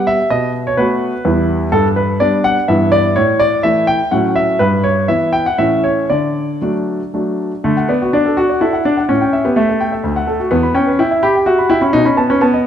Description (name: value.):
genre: classical-period piano sonatina.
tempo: 126 BPM.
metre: 3/4.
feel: rubato.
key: D major.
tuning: A4 = 441 Hz.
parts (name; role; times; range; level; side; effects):
warm grand piano; solo; 0.0-12.7 s; D2 to B5; -12 LUFS; equal; none.
room: moderate recital hall reverb, RT60 1.4 s.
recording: none.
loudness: -12 LUFS.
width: side -9 dB against mid.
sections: 0.0-7.6 A section; 7.6-12.7 B section.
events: none.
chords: 0.3 B5; 1.2 Em; 1.7 G; 2.7 Em/G; 3.2 A5; 4.1 F#m/A; 4.6 Em/G; 5.6 A; 6.1 D; 9.1 A5; 10.0 D; 10.5 Em; 11.9 B7.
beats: | 0.31 0.78 1.25 | 1.72 2.20 2.68 | 3.16 3.64 4.12 | 4.60 5.08 5.59 | 6.10 6.62 7.14 | 7.65 8.14 8.62 | 9.09 9.57 10.04 | 10.51 10.99 11.47 | 11.94 12.41.